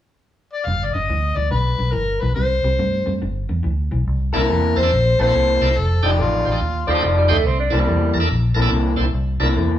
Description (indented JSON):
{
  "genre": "blues",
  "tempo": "142 BPM",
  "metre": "4/4",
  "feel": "swing 65% on 8ths",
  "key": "C mixolydian from 4.1 s",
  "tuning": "A4 = 441 Hz",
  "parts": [
    { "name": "overdriven harmonica", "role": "melody", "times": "0.5-7.0 s", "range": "F4 to F5", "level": "-21 LUFS", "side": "left 2 dB", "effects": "none" },
    { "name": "electric guitar through a small old amp", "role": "riff", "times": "0.7-9.8 s", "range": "G2 to D5", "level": "-24 LUFS", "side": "left 3 dB", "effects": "none" },
    { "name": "vintage muted fingered electric bass", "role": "bass", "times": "0.7-9.8 s", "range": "F1 to G2", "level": "-19 LUFS", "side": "equal", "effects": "none" },
    { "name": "bright tonewheel organ", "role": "accompaniment", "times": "4.3-9.5 s", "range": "D4 to C5", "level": "-25 LUFS", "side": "right 2 dB", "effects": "slow rotary speaker, overdrive" },
    { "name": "clear tenor saxophone", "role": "second line", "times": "6.9-8.1 s", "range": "F3 to D4", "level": "-22 LUFS", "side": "right 3 dB", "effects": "none" }
  ],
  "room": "moderate stone room reverb, RT60 1.1 s",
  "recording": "band playing live in one room, small room ambience",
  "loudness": "-16 LUFS",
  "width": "side -11 dB against mid",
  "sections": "0.7-4.1 A section; 4.1-9.8 B section",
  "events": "none",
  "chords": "0.0 N.C.; 0.7 G; 2.4 C5; 3.2 G; 4.1 C13; 5.8 F13; 7.5 C13"
}